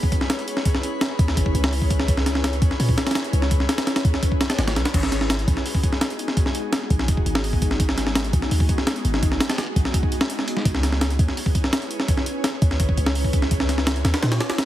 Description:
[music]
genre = drum and bass, jungle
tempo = 168 BPM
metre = 4/4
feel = straight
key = G# minor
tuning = A4 = 440 Hz
[part]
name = breakbeat sampler-style drum kit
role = drums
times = 0.0-14.7 s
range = crash cymbal, hi-hat, kick drum, snare drum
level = -21 LUFS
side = equal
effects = none
[part]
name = drifting glass-harmonics texture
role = texture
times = 0.0-4.9 s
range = B4 to B5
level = -38 LUFS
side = left 2 dB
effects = chorus, built-in reverb
[part]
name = warm 808-style bass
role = bass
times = 1.2-14.4 s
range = D#1 to A#2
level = -23 LUFS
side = equal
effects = tube saturation
[sound]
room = light reverb, digital ambience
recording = heavily compressed radio sound, multiband compression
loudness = -19 LUFS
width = side -13 dB against mid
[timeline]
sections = 0.0-4.9 A section; 4.9-14.7 A section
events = drop 0.0-4.9, 4.9-14.7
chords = 0.0 C#m7; 4.9 G#m7; 10.7 C#m7

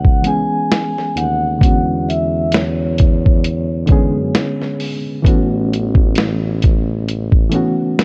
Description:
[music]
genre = lo-fi hip hop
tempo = 66 BPM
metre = 4/4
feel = swing 58% on 16ths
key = A major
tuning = A4 = 440 Hz
[part]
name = vibraphone with soft mallets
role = melody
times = 0.0-4.8 s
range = C#5 to G#5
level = -24 LUFS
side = equal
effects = none
[part]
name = reed electric piano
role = accompaniment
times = 0.0-8.0 s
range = D3 to G#4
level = -22 LUFS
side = equal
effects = fast tremolo, cassette tape
[part]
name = mellow tuba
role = bass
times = 0.0-7.7 s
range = A1 to F#2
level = -22 LUFS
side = equal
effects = none
[part]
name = lo-fi sampler-style drum kit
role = drums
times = 0.0-8.0 s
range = hi-hat, kick drum, snare drum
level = -16 LUFS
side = equal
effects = none
[sound]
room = small room ambience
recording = cassette tape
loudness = -16 LUFS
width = mono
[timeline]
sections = 0.0-8.0 A section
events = none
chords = 0.0 C#m7; 1.6 E13; 5.3 A69

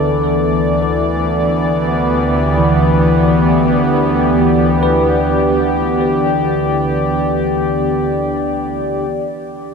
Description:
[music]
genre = ambient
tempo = free time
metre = none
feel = none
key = unclear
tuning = A4 = 439 Hz
[part]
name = warm analog pad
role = sustained chords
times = 0.0-9.7 s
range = D2 to D5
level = -14 LUFS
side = left 1 dB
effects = chorus, tremolo
[part]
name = bell-like tine electric piano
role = arpeggios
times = 0.0-9.1 s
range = E3 to B4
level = -21 LUFS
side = equal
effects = phaser, ping-pong delay
[part]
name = analog drone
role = drone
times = 0.0-9.7 s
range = D3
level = -22 LUFS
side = right 2 dB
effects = chorus
[sound]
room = wet huge ambient reverb, RT60 7.6 s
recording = none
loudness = -12 LUFS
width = side -5 dB against mid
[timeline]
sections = 0.0-9.1 A section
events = none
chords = 0.0 Em7/D; 9.1 D5

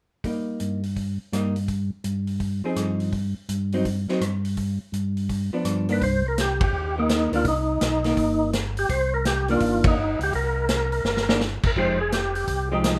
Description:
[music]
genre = soul jazz organ trio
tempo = 167 BPM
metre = 4/4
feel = swing 65% on 8ths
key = C minor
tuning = A4 = 442 Hz
[part]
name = vintage hollow-body jazz guitar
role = accompaniment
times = 0.2-13.0 s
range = Eb3 to Ab4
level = -28 LUFS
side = equal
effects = none
[part]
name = vintage drum kit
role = drums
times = 0.2-12.9 s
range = crash cymbal, hi-hat, kick drum, ride cymbal, rim click, snare drum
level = -29 LUFS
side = equal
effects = none
[part]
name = mellow tonewheel organ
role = bass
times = 0.6-13.0 s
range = F1 to G2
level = -29 LUFS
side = equal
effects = overdrive, chorus vibrato, slow rotary speaker
[part]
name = percussive tonewheel organ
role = melody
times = 5.9-13.0 s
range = Eb4 to C5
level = -27 LUFS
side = equal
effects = slow rotary speaker, overdrive, chorus vibrato
[sound]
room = moderate small room reverb, RT60 0.6 s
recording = none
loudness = -24 LUFS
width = mono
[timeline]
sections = 0.2-6.0 A section; 6.0-13.0 B section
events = band accent 6.6, 9.8; drum fill 11.0-11.4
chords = 0.2 Gm; 1.7 Fm7; 3.1 Cm/G; 4.6 G7; 6.0 Cm9; 11.8 Fm9

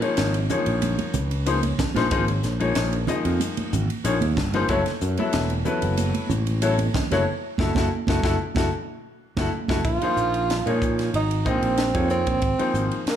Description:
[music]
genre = electric jazz fusion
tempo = 93 BPM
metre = 4/4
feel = straight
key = Bb minor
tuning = A4 = 439 Hz
[part]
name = bright baby grand piano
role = accompaniment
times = 0.0-13.0 s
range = F3 to Fb5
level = -25 LUFS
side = left 3 dB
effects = none
[part]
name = crisp fusion drum kit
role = drums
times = 0.0-13.2 s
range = hi-hat, kick drum, ride cymbal, snare drum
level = -29 LUFS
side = equal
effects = none
[part]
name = modern bright fingered electric bass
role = bass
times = 0.2-13.1 s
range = Fb1 to Bb2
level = -25 LUFS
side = equal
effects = none
[part]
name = congas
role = percussion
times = 0.5-9.8 s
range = none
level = -30 LUFS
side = right 6 dB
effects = none
[part]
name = breathy tenor saxophone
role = melody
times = 9.8-13.2 s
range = Bb3 to F4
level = -24 LUFS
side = right 4 dB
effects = slapback echo
[sound]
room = light reverb, small room ambience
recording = none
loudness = -21 LUFS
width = side -10 dB against mid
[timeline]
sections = 0.0-9.8 A section; 9.8-13.2 B section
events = band accent 7.3-9.8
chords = 0.0 Bbm11; 4.7 Gbm7; 9.8 Bbm11; 12.4 Ab69

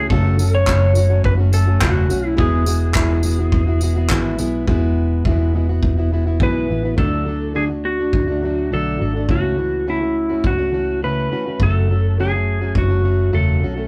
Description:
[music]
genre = acoustic pop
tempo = 104 BPM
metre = 4/4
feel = straight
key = unclear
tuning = A4 = 439 Hz
[part]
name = clean lap steel guitar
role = melody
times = 0.0-13.9 s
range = E4 to C#5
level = -24 LUFS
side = equal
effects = none
[part]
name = fingerpicked plugged-in steel-string acoustic guitar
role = accompaniment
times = 0.0-13.9 s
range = F#2 to F#4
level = -25 LUFS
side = equal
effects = none
[part]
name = vintage muted fingered electric bass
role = bass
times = 0.0-13.9 s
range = E1 to D2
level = -21 LUFS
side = equal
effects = none
[part]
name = unplugged drum kit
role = drums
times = 0.1-12.9 s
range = handclaps, kick drum, tambourine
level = -23 LUFS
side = equal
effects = none
[sound]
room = moderate booth ambience, RT60 0.2 s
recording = rough rehearsal-room recording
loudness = -18 LUFS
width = mono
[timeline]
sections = 0.0-4.7 A section; 4.7-7.0 B section; 7.0-13.9 C section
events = none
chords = 0.1 F#m; 2.4 Eadd9; 7.0 D; 9.3 A6/C#; 11.6 F#m

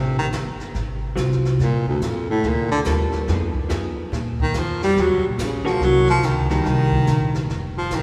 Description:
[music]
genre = jazz, small-group swing and bop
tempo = 142 BPM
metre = 4/4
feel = swing 65% on 8ths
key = unclear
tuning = A4 = 439 Hz
[part]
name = breathy baritone saxophone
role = melody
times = 0.0-8.0 s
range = D2 to G3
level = -24 LUFS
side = equal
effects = none
[part]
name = upright bass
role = bass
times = 0.0-8.0 s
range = F1 to Bb2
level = -25 LUFS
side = equal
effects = none
[part]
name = jazz brush drum kit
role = drums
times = 0.3-8.0 s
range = brushed snare drum, hi-hat, kick drum, snare drum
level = -34 LUFS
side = equal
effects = none
[part]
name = vintage hollow-body jazz guitar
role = accompaniment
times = 1.2-6.9 s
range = Eb3 to A4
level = -31 LUFS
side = equal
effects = none
[sound]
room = wet church reverb, RT60 3.4 s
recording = recorded in a church or concert hall, small room ambience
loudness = -21 LUFS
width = mono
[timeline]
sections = 0.0-8.0 A section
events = baritone saxophone solo 0.0-8.0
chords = 0.0 Am7; 0.8 Ab6; 1.6 Gm9; 3.3 Fm7b5; 4.1 Bb5; 5.0 Ebm7; 6.7 Cm7; 7.5 F

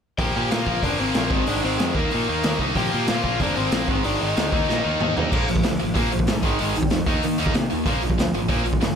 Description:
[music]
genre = punk rock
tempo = 188 BPM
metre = 4/4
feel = straight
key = Bb mixolydian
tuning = A4 = 440 Hz
[part]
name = overdriven semi-hollow guitar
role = melody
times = 0.2-5.1 s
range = Bb3 to G5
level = -27 LUFS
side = left 6 dB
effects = none
[part]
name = tight distorted guitar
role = riff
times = 0.2-9.0 s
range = Ab2 to Eb4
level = -23 LUFS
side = equal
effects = distortion
[part]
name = growling picked electric bass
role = bass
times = 0.2-8.9 s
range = F1 to Eb3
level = -28 LUFS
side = right 1 dB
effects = overdrive
[part]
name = raw garage drum kit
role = drums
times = 0.2-8.9 s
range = crash cymbal, hi-hat, kick drum, snare drum, toms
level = -24 LUFS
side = equal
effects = none
[sound]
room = light reverb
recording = none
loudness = -19 LUFS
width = side -7 dB against mid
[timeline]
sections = 0.2-5.3 A section; 5.3-9.0 B section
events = drum fill 4.7-5.3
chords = 0.2 Bb; 1.3 Ab; 2.0 Eb5; 2.8 Bb; 3.9 Ab; 4.5 Eb5; 5.3 Bb5; 6.4 Ab5; 7.1 Eb5; 7.9 Bb5

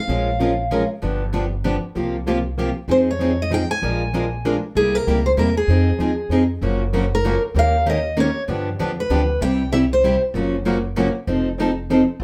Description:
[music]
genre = acoustic string swing (jazz manouche)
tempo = 193 BPM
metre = 3/4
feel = swing 60% on 8ths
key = F minor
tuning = A4 = 440 Hz
[part]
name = picked steel-string acoustic guitar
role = melody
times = 0.0-0.9, 2.9-10.2 s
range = Ab4 to Ab5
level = -23 LUFS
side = equal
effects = plate reverb
[part]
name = picked plugged-in steel-string acoustic guitar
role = accompaniment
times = 0.1-12.2 s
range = C3 to Bb4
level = -28 LUFS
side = equal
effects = none
[part]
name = picked steel-string acoustic guitar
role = accompaniment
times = 0.1-12.0 s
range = C3 to Bb4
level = -24 LUFS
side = equal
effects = none
[part]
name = upright bass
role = bass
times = 0.1-12.2 s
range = F1 to G2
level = -26 LUFS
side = equal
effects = none
[sound]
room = wet studio ambience, RT60 0.5 s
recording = heard from further back in the room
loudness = -20 LUFS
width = mono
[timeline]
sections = 0.0-6.6 A section; 6.6-12.2 B section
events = none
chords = 0.1 Bbm7; 1.0 G7; 1.9 C7sus4; 2.9 Fm7; 3.8 Bb7; 4.7 C7; 5.7 Fm7; 6.6 Gbmaj7; 7.5 Eb7; 8.5 G7; 9.4 C; 10.3 Gbmaj7; 11.3 F7

